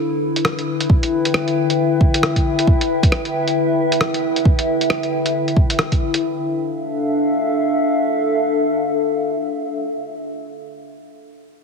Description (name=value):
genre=future garage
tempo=135 BPM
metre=4/4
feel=swing 60% on 16ths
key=D dorian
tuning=A4 = 439 Hz
part: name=warbly tape-like pad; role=sustained chords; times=0.0-10.2 s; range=D3 to G5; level=-18 LUFS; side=left 2 dB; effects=chorus, built-in reverb, sidechain pumping
part: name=lo-fi sampler-style drum kit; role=drums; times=0.4-6.2 s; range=hi-hat, rim click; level=-22 LUFS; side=equal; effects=none
part: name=electronic kick drum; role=drums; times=0.9-6.0 s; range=none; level=-15 LUFS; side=equal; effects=none
room=moderate lush hall reverb, RT60 2.1 s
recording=heavily compressed radio sound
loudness=-16 LUFS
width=side -5 dB against mid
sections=0.0-6.2 A section; 6.2-9.8 B section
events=none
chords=0.0 Em7/D; 6.2 Dm